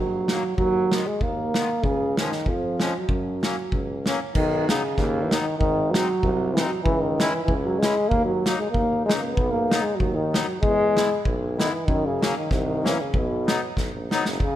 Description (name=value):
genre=alpine folk, alpine dance band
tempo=96 BPM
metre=2/4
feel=swing 54% on 8ths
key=F# major, B major from 4.4 s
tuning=A4 = 440 Hz
part: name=warm euphonium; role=melody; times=0.0-14.6 s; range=B2 to B3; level=-24 LUFS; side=equal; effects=none
part: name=clear tuba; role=bass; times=0.0-14.4 s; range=F#1 to F#2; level=-29 LUFS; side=equal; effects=none
part: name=accordion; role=accompaniment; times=0.3-14.2 s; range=D#3 to E4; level=-30 LUFS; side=left 3 dB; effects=none
part: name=loose indie drum kit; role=drums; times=0.3-14.6 s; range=crash cymbal, hi-hat, kick drum, snare drum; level=-26 LUFS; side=equal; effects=none
room=light reverb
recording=none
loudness=-21 LUFS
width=side -12 dB against mid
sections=0.0-4.4 A section; 4.4-14.4 B section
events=drum fill 13.8-14.4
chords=0.0 D#m; 0.6 G#m/D#; 1.8 C#; 3.1 F#; 4.4 B; 5.6 G#7; 6.9 C#m; 8.1 D#m; 9.4 B; 10.6 E; 11.9 F#; 13.1 B